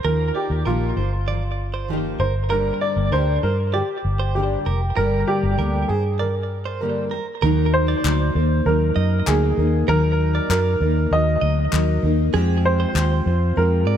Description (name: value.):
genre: acoustic pop.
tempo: 98 BPM.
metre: 4/4.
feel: straight.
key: unclear.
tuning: A4 = 440 Hz.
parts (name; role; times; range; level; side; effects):
warm upright piano; melody; 0.0-14.0 s; F4 to Eb5; -24 LUFS; right 2 dB; tape echo.
fingerpicked steel-string acoustic guitar; accompaniment; 0.0-14.0 s; G2 to Bb4; -24 LUFS; left 1 dB; double-tracked left and right.
direct-recorded clean electric guitar; arpeggios; 0.0-14.0 s; Ab4 to Eb5; -30 LUFS; right 8 dB; tremolo, tape echo.
vintage muted fingered electric bass; bass; 0.0-14.0 s; F1 to Ab2; -20 LUFS; equal; none.
group handclap; percussion; 8.1-13.1 s; none; -28 LUFS; left 8 dB; none.
room: light reverb, studio reverb.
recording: echo-heavy mix.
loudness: -18 LUFS.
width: side -9 dB against mid.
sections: 0.0-7.4 A section; 7.4-14.0 B section.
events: none.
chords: 0.0 Ebadd9; 2.2 Gm; 7.4 Ebm; 12.3 Fmadd9.